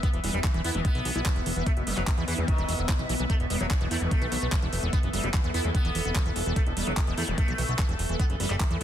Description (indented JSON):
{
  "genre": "psychedelic trance",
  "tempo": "147 BPM",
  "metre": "4/4",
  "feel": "straight",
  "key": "unclear",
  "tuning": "A4 = 440 Hz",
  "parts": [
    { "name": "sitar", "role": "melody", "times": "0.0-8.8 s", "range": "B2 to B3", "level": "-34 LUFS", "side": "left 1 dB", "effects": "phaser, sidechain pumping, dub echo" },
    { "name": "overtone-sweeping drone", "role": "sustained chords", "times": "0.0-8.8 s", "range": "A4 to E5", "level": "-37 LUFS", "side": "equal", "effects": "chorus, built-in reverb, phaser, sidechain pumping" },
    { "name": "liquid acid bass", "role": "riff", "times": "0.0-8.8 s", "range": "D#3 to E4", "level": "-35 LUFS", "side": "right 1 dB", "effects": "chorus, auto-pan, sidechain pumping, tape echo" },
    { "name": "electronic kick drum", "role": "drums", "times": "0.0-8.7 s", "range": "none", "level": "-25 LUFS", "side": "equal", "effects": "none" },
    { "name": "garage drum kit", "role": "drums", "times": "0.0-8.8 s", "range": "handclaps, hi-hat", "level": "-34 LUFS", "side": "equal", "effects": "none" },
    { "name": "granular cloud pad", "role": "texture", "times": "0.0-8.8 s", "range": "B3 to E5", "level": "-36 LUFS", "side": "equal", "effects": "built-in reverb, sidechain pumping" },
    { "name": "fat analog bass", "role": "bass", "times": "0.1-8.8 s", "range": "E1 to E2", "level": "-30 LUFS", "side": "equal", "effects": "none" }
  ],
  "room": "light reverb, digital ambience",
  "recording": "dense, heavily limited modern master",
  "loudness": "-24 LUFS",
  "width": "side -10 dB against mid",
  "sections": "0.0-8.8 A section",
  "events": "none",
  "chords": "0.0 E5",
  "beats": "| 0.03 0.44 0.85 1.26 | 1.67 2.07 2.48 2.89 | 3.30 3.71 4.11 4.52 | 4.93 5.34 5.75 6.16 | 6.56 6.97 7.38 7.79 | 8.20 8.60"
}